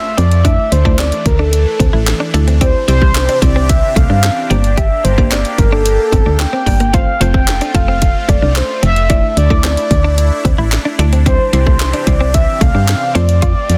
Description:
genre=dance-pop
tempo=111 BPM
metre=4/4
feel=straight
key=F major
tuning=A4 = 440 Hz
part: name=mellow horn-like synth lead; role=melody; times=0.0-13.8 s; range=A4 to G5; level=-20 LUFS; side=equal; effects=chorus, digital delay
part: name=supersaw pad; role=sustained chords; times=0.0-13.8 s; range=C3 to G4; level=-28 LUFS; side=equal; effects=phaser, sidechain pumping
part: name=direct-recorded clean electric guitar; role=riff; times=0.2-13.7 s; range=G3 to G4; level=-24 LUFS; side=equal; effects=analog chorus
part: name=solid FM bass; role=bass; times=0.2-13.8 s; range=F1 to G2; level=-16 LUFS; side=equal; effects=sidechain pumping
part: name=house drum kit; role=drums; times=0.2-13.8 s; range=handclaps, hi-hat, kick drum, snare drum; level=-17 LUFS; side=equal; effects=none
part: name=mallet-like synth pluck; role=accompaniment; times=0.4-13.7 s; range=G3 to D5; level=-24 LUFS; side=equal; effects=chorus, sidechain pumping
room=little or no reverb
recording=dense, heavily limited modern master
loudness=-13 LUFS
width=mono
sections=0.0-13.8 A section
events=none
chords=0.4 Dsus2; 2.6 Cadd9; 4.5 Gm; 6.9 F; 9.1 Dsus2; 11.3 Cadd9; 13.2 F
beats=| 0.45 0.99 1.53 2.07 | 2.61 3.15 3.69 4.23 | 4.77 5.31 5.86 6.39 | 6.94 7.48 8.02 8.56 | 9.10 9.64 10.18 10.72 | 11.26 11.80 12.34 12.88 | 13.42

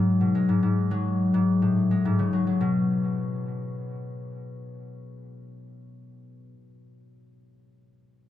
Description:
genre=folktronica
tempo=106 BPM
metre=4/4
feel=straight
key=unclear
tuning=A4 = 440 Hz
part: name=concert harp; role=solo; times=0.0-6.5 s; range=G#2 to B3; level=-24 LUFS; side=left 2 dB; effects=tape echo
room=moderate echo chamber reverb, RT60 1.6 s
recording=none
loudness=-22 LUFS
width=side -12 dB against mid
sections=0.0-2.6 A section; 2.6-4.9 B section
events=none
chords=0.3 F#madd9; 2.6 N.C.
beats=| 0.35 0.92 1.48 2.05 | 2.61 3.18 3.75 4.31

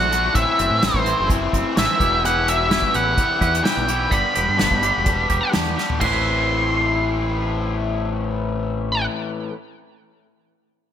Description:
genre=indie rock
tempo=127 BPM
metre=4/4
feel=straight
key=A dorian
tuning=A4 = 439 Hz
part: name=octave-fuzz lead guitar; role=melody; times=0.0-9.1 s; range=C5 to C6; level=-21 LUFS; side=equal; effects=distortion, ping-pong delay
part: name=raw garage guitar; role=riff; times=0.0-9.5 s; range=E2 to G4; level=-24 LUFS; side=left 5 dB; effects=overdrive, analog chorus
part: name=twangy electric guitar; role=riff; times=0.0-9.5 s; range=E3 to B4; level=-28 LUFS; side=right 6 dB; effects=wide subtle chorus
part: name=growling fingered electric bass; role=bass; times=0.0-9.1 s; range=E1 to A2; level=-25 LUFS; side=equal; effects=overdrive
part: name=unplugged drum kit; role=drums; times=0.1-6.1 s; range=crash cymbal, hi-hat, kick drum, snare drum, toms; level=-23 LUFS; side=equal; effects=gated reverb
room=light reverb, small room reverb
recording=bright 1980s-style digital production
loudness=-17 LUFS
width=side -9 dB against mid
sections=0.0-6.0 A section; 6.0-9.8 B section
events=drum fill 5.8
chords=0.3 Amadd9; 2.0 Em; 4.1 G; 6.0 Amadd9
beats=| 0.34 0.81 1.28 1.75 | 2.23 2.70 3.17 3.65 | 4.12 4.59 5.07 5.54 | 6.01 6.49 6.96 7.44 | 7.91 8.38 8.86 9.33

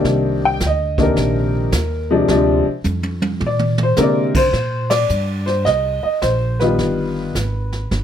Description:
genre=jazz piano trio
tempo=107 BPM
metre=4/4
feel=swing 67% on 8ths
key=C minor, Eb major from 4.5 s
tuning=A4 = 439 Hz
part: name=warm upright piano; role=melody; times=0.0-8.0 s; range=C3 to G5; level=-17 LUFS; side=left 1 dB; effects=none
part: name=upright bass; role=bass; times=0.0-8.0 s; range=G1 to D3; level=-21 LUFS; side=right 1 dB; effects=none
part: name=jazz brush drum kit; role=drums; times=0.0-8.0 s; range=brushed snare drum, crash cymbal, hi-hat, kick drum, ride cymbal, snare drum, toms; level=-23 LUFS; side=right 2 dB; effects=none
room=light reverb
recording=none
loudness=-15 LUFS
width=side -9 dB against mid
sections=0.0-4.5 A section; 4.5-8.0 B section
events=upright piano solo 0.0-4.5; drum fill 2.9-4.0; band accent 4.8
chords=0.0 Cm9; 2.3 Dm7b5; 3.4 Bb9; 4.5 Eb6; 6.8 G7b13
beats=| 0.05 0.61 1.17 1.73 | 2.29 2.86 3.42 3.98 | 4.54 5.10 5.67 6.23 | 6.79 7.35 7.91

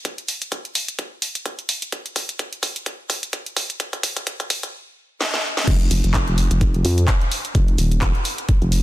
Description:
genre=bass house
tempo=128 BPM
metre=4/4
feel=swing 56% on 16ths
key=unclear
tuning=A4 = 440 Hz
part: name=electronic kick drum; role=drums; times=0.1-8.6 s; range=none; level=-22 LUFS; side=equal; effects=high-pass filter on kick, studio reverb, high-pass filter on room
part: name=garage drum kit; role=drums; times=0.1-8.8 s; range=crash cymbal, handclaps, hi-hat, snare drum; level=-24 LUFS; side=equal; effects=studio reverb
part: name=vowel-sweep wobble bass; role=bass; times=5.7-8.8 s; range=Eb1 to F2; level=-18 LUFS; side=equal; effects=chorus, sidechain pumping
room=little or no reverb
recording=dense, heavily limited modern master, high-pass filter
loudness=-19 LUFS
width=side -15 dB against mid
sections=0.0-5.7 A section; 5.7-8.8 B section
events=build-up 0.0-5.7; drum fill 0.0-4.7, 5.2-5.7; drop 5.7-8.8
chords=none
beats=| 0.05 0.52 0.99 1.46 | 1.93 2.39 2.86 3.33 | 3.80 4.27 4.74 5.21 | 5.68 6.14 6.61 7.08 | 7.55 8.02 8.49

